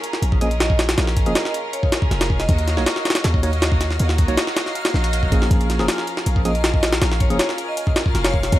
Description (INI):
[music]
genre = drum and bass, jungle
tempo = 159 BPM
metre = 4/4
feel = straight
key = Bb minor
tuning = A4 = 440 Hz
[part]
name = rich chamber string section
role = sustained chords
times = 0.0-8.6 s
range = Db4 to Eb5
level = -27 LUFS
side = equal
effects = none
[part]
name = jungle sampler-style drum kit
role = drums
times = 0.0-8.6 s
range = hi-hat, kick drum, snare drum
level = -19 LUFS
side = equal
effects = small room ambience
[part]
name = backwards swelling texture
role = texture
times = 0.4-8.6 s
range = F5 to F6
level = -33 LUFS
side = left 1 dB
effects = built-in reverb
[part]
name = warm 808-style bass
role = bass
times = 0.2-8.6 s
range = F1 to Eb2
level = -21 LUFS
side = equal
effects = none
[part]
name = vibraphone with medium hard mallets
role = melody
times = 0.4-2.5, 6.5-8.6 s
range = Db5 to Eb5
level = -28 LUFS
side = right 1 dB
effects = dub echo
[part]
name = bright tine electric piano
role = stabs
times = 0.4-7.4 s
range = F3 to Db5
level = -27 LUFS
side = right 1 dB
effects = medium stereo tremolo, dub echo
[sound]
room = digital ambience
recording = vinyl crackle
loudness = -17 LUFS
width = side -14 dB against mid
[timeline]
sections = 0.0-8.6 A section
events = none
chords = 0.0 Bbm7; 2.5 Ebm7; 5.5 Bbm7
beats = 0.23 0.60 | 0.98 1.36 1.73 2.11 | 2.49 2.87 3.24 3.62 | 4.00 4.38 4.75 5.13 | 5.51 5.88 6.26 6.64 | 7.02 7.39 7.77 8.15 | 8.53